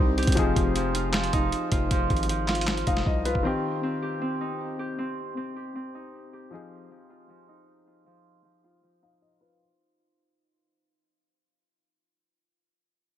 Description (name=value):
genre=hip hop, trap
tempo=156 BPM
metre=4/4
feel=half-time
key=unclear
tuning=A4 = 439 Hz
part: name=dark grand piano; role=accompaniment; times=0.0-9.6 s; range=Eb3 to F5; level=-32 LUFS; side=left 5 dB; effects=low-pass filter
part: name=Celtic harp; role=arpeggios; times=0.0-11.9 s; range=F3 to G4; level=-30 LUFS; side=right 1 dB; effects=low-pass filter, ping-pong delay
part: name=hard-hitting 808-style bass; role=bass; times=0.0-3.4 s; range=F1 to C2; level=-29 LUFS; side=equal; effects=none
part: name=boom bap sampler-style drum kit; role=drums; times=0.2-3.4 s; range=handclaps, hi-hat, kick drum, snare drum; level=-26 LUFS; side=equal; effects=none
room=digital ambience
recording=none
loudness=-24 LUFS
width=side -11 dB against mid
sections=0.0-9.6 A section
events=fade-out 0.0-9.6; filter sweep 0.0-9.6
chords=0.4 Fm7; 3.4 Cm; 6.5 Fm7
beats=| 0.37 0.76 1.14 1.52 | 1.91 2.29 2.68 3.06 | 3.45 3.83 4.22 4.60 | 4.99 5.37 5.75 6.14 | 6.52 6.91 7.29 7.68 | 8.06 8.45 8.83 9.22